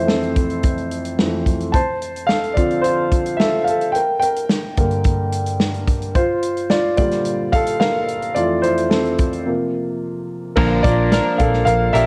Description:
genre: piano-driven pop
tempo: 109 BPM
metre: 4/4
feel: straight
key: unclear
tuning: A4 = 440 Hz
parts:
  - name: warm grand piano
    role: accompaniment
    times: 0.0-12.1 s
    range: F2 to A5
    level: -20 LUFS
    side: equal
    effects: cassette tape
  - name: natural country drum kit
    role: drums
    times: 0.1-12.1 s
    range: crash cymbal, hi-hat, kick drum, snare drum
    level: -22 LUFS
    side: equal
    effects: cassette tape
  - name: clean electric guitar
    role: riff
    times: 10.6-12.1 s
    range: Bb2 to Bb4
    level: -22 LUFS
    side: equal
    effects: analog chorus, cassette tape
  - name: vintage muted picked electric bass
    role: bass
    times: 10.6-12.1 s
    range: Bb1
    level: -22 LUFS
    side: equal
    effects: none
room: light reverb, small room ambience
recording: home recording on cassette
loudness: -19 LUFS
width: mono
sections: 0.0-10.6 A section; 10.6-12.1 B section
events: grand piano solo 0.0-10.6, 10.6-12.1; break 9.5-10.6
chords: 0.0 Fmaj7; 1.7 Dm7; 3.9 Gm; 6.2 Bb6; 8.4 Fmaj7; 9.5 C7sus4; 10.6 Bb

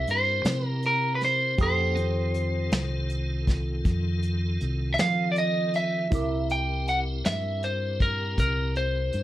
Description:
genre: slow blues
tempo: 53 BPM (dotted quarters)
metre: 12/8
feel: straight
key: unclear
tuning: A4 = 440 Hz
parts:
  - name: electric guitar at the edge of break-up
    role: melody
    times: 0.0-9.2 s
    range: Bb4 to G5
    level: -27 LUFS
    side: equal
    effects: none
  - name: dark grand piano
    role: accompaniment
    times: 0.0-9.2 s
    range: E4 to Eb6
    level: -34 LUFS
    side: right 5 dB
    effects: none
  - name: tonewheel organ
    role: sustained chords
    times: 0.0-9.2 s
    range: Eb3 to F#5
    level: -35 LUFS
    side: left 1 dB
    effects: chorus vibrato, slow rotary speaker
  - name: fingered electric bass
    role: bass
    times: 0.0-9.2 s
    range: C2 to F3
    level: -28 LUFS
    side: equal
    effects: none
  - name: vintage brush drum kit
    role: drums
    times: 0.1-9.2 s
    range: hi-hat, kick drum, snare drum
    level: -27 LUFS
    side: equal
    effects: none
room: light reverb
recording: none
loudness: -24 LUFS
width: side -14 dB against mid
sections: 0.0-9.2 A section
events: none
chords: 0.0 C7; 1.6 F7; 6.1 C7

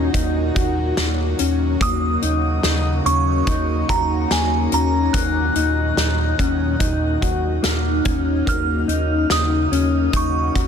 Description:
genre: dream pop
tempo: 72 BPM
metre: 4/4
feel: straight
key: unclear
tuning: A4 = 440 Hz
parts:
  - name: phased analog pad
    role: sustained chords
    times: 0.0-10.7 s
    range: Bb2 to Gb4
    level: -25 LUFS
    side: right 1 dB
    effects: phaser, chorus, shimmer reverb
  - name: mellow electric guitar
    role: arpeggios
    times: 0.0-10.7 s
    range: Bb3 to Gb4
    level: -23 LUFS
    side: left 5 dB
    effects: wide subtle chorus, ping-pong delay, shimmer reverb
  - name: round analog bass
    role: bass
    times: 0.0-10.7 s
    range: Eb2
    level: -22 LUFS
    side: equal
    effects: none
  - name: loose indie drum kit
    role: drums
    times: 0.1-10.7 s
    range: hi-hat, kick drum, snare drum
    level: -23 LUFS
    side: equal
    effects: none
  - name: glassy synth bell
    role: melody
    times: 1.8-10.7 s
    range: Ab5 to F6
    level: -25 LUFS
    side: right 3 dB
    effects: chorus, ping-pong delay, shimmer reverb
  - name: glockenspiel with rubber mallets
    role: texture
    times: 5.1-8.9 s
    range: F6 to Gb6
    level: -30 LUFS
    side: left 4 dB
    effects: ping-pong delay, shimmer reverb
room: light reverb, studio reverb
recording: dense, heavily limited modern master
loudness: -17 LUFS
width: side -7 dB against mid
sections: 0.0-10.7 A section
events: none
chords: 0.0 Ebm; 5.1 Gb6/Eb

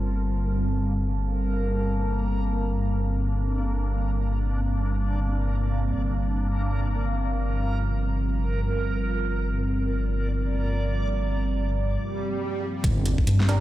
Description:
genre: deep dubstep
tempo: free time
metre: none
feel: none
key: G minor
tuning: A4 = 438 Hz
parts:
  - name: deep dark ambient pad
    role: sustained chords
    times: 0.0-13.6 s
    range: G3 to A5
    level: -30 LUFS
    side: right 1 dB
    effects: chorus, built-in reverb
  - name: dark detuned saw bass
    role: bass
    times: 0.0-13.6 s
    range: G1 to G2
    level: -25 LUFS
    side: equal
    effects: none
  - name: backwards swelling texture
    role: texture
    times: 0.0-13.6 s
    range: Bb3 to D5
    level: -33 LUFS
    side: right 1 dB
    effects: built-in reverb
  - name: swell and sub drop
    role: sound effects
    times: 12.1-13.6 s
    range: none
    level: -30 LUFS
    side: right 1 dB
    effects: none
  - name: dubstep drum kit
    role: drums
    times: 12.8-13.6 s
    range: hi-hat, snare drum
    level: -31 LUFS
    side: equal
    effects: small room ambience
  - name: electronic kick drum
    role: drums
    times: 12.8-13.3 s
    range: none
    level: -25 LUFS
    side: equal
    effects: small room ambience
  - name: filtered dub chord stab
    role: stabs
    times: 13.5-13.6 s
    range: G3 to Bb4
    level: -26 LUFS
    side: right 3 dB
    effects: chorus
room: light reverb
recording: played on a big sound system in a bare room, stone room reverb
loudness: -23 LUFS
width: side -14 dB against mid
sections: 0.0-12.8 A section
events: filter sweep on ambient pad 0.0-12.8; break 12.0-12.8; swell 12.1-12.8; impact 12.8-13.6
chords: 0.0 Gm

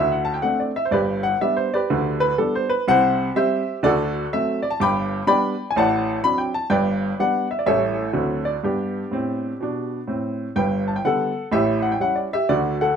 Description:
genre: jazz, stride piano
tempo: 125 BPM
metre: 4/4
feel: swing 64% on 8ths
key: G major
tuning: A4 = 440 Hz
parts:
  - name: clear baby grand piano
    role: solo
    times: 0.0-13.0 s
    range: G1 to D6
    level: -19 LUFS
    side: equal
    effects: none
room: wet small room reverb, RT60 0.5 s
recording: rough home demo mix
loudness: -19 LUFS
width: side -7 dB against mid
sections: 0.0-10.6 A section; 10.6-13.0 A section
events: none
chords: 0.0 D5; 0.9 G; 2.9 C; 3.8 D7; 4.8 G; 5.8 D7/A; 6.7 G; 7.7 A7; 8.2 D7; 8.6 G; 11.5 A7

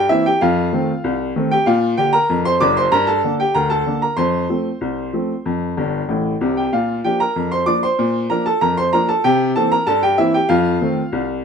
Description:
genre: ragtime piano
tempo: 95 BPM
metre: 2/4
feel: straight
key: Bb major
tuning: A4 = 440 Hz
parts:
  - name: clear upright piano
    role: solo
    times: 0.0-11.4 s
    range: Gb1 to D6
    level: -15 LUFS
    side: equal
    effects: none
room: moderate studio reverb, RT60 0.6 s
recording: none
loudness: -15 LUFS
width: side -6 dB against mid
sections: 0.0-11.4 A section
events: upright piano fill 5.8-6.7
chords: 0.4 F7; 1.7 Bb; 2.9 Gm; 4.2 F; 6.7 Bb; 9.2 C7; 10.5 F7

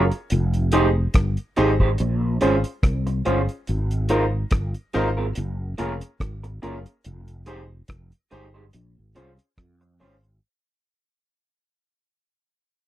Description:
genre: lovers rock reggae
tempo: 71 BPM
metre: 4/4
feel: swing 55% on 16ths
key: unclear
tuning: A4 = 441 Hz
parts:
  - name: clear concert grand piano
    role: accompaniment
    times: 0.0-10.1 s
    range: Db4 to C5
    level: -24 LUFS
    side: left 2 dB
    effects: none
  - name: electric guitar through a small old amp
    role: stabs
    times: 0.0-10.1 s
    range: Ab3 to C5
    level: -24 LUFS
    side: right 4 dB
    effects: lush chorus
  - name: fretless electric bass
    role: bass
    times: 0.0-10.4 s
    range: F1 to F2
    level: -23 LUFS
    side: equal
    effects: ensemble chorus
  - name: cloth-damped thuddy drum kit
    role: drums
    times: 0.1-10.4 s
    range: hi-hat, kick drum, rim click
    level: -21 LUFS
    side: equal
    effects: none
room: little or no reverb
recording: dry, close 1970s-style studio recording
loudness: -20 LUFS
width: side -13 dB against mid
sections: 0.0-10.4 A section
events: fade-out 0.0-10.4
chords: 0.3 Fm9; 2.0 Bbm9; 3.7 Ab69; 5.4 Gbmaj7; 7.0 Fm9; 8.7 Bbm9 (rootless)

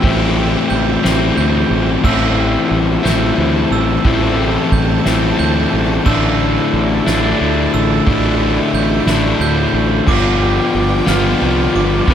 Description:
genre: post-rock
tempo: 60 BPM (dotted quarters)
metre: 6/8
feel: straight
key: A minor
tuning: A4 = 440 Hz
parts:
  - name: clear studio string section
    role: sustained chords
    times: 0.0-12.1 s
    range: E4 to B5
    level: -26 LUFS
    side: right 4 dB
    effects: none
  - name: glockenspiel with brass mallets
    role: arpeggios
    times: 0.0-12.1 s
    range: D6 to A6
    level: -24 LUFS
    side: right 9 dB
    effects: tape echo
  - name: mellow electric guitar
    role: arpeggios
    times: 0.0-12.1 s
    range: G2 to G4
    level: -25 LUFS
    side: right 1 dB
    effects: none
  - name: overdriven electric guitar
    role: riff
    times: 0.0-12.1 s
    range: G2 to F4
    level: -15 LUFS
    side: left 5 dB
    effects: none
  - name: fuzz fingered electric bass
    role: bass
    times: 0.0-12.1 s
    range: G1 to D2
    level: -19 LUFS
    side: right 2 dB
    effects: overdrive
  - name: soft-mallet drum kit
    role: drums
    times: 0.0-12.1 s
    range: crash cymbal, kick drum, ride cymbal, snare drum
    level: -19 LUFS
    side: right 3 dB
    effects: none
room: studio reverb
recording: none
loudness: -12 LUFS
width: side -9 dB against mid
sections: 0.0-12.1 A section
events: none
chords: 0.0 Am7; 6.1 Dsus2/A; 10.1 G7

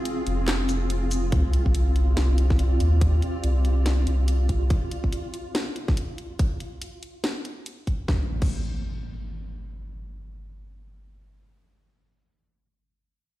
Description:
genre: deep dubstep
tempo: 142 BPM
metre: 4/4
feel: swing 59% on 16ths, half-time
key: unclear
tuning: A4 = 441 Hz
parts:
  - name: granular cloud pad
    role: sustained chords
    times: 0.0-4.7 s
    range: C4 to D5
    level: -32 LUFS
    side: equal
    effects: built-in reverb
  - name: flickering grainy texture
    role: texture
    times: 0.0-6.4 s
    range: F4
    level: -35 LUFS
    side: right 1 dB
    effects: built-in reverb
  - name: garage drum kit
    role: drums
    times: 0.1-8.5 s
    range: crash cymbal, handclaps, hi-hat, shaker, snare drum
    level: -31 LUFS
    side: equal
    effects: none
  - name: soft dub sub bass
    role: bass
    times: 0.3-4.7 s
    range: F1 to Eb2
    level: -21 LUFS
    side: equal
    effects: none
  - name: electronic kick drum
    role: drums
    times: 1.3-8.5 s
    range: none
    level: -23 LUFS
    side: equal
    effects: none
  - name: sub drop and impact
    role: sound effects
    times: 1.3-3.0, 8.1-11.2 s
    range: none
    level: -31 LUFS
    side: equal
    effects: none
room: light reverb, digital ambience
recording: played on a big sound system in a bare room, stone room reverb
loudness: -22 LUFS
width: side -16 dB against mid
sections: 0.0-1.3 A section; 1.3-8.1 B section; 8.1-11.5 C section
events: break 0.0-1.3; drop 0.0-1.3; impact 1.3-3.0; filter sweep on sub bass 1.3-4.7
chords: 0.0 Fm; 1.3 Cm; 4.7 N.C.

